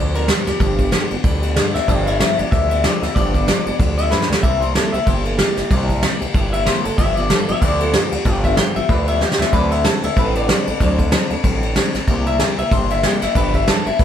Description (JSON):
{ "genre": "rockabilly", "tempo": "188 BPM", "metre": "4/4", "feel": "swing 58% on 8ths", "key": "G mixolydian", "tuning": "A4 = 442 Hz", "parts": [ { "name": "electric guitar through a small old amp", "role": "melody", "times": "0.0-14.0 s", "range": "G4 to A5", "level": "-22 LUFS", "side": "left 2 dB", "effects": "spring reverb" }, { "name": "picked steel-string acoustic guitar", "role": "accompaniment", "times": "0.0-14.0 s", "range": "G2 to A4", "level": "-24 LUFS", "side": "left 3 dB", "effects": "none" }, { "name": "gritty driven synth bass", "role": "bass", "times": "0.0-14.0 s", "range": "G1 to D2", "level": "-22 LUFS", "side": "equal", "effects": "none" }, { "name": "soft brush drum kit", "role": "drums", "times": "0.1-14.0 s", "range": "kick drum, ride cymbal, snare drum", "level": "-18 LUFS", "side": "equal", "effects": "none" } ], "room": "moderate studio reverb, RT60 0.5 s", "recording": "band playing live in one room", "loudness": "-15 LUFS", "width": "side -9 dB against mid", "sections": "0.0-14.0 A section", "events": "clean electric guitar solo 0.0-14.0; drum fill 4.1-4.4, 9.2-9.5", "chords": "0.0 G7; 4.4 C7; 7.0 G7; 9.5 D7; 12.1 C7; 13.4 G7", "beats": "0.28 | 0.60 0.92 1.24 1.56 | 1.88 2.20 2.52 2.84 | 3.16 3.48 3.80 4.12 | 4.43 4.75 5.07 5.39 | 5.71 6.03 6.34 6.66 | 6.98 7.30 7.62 7.94 | 8.26 8.57 8.89 9.21 | 9.53 9.85 10.17 10.49 | 10.80 11.12 11.44 11.76 | 12.08 12.40 12.72 13.04 | 13.36 13.68 13.99" }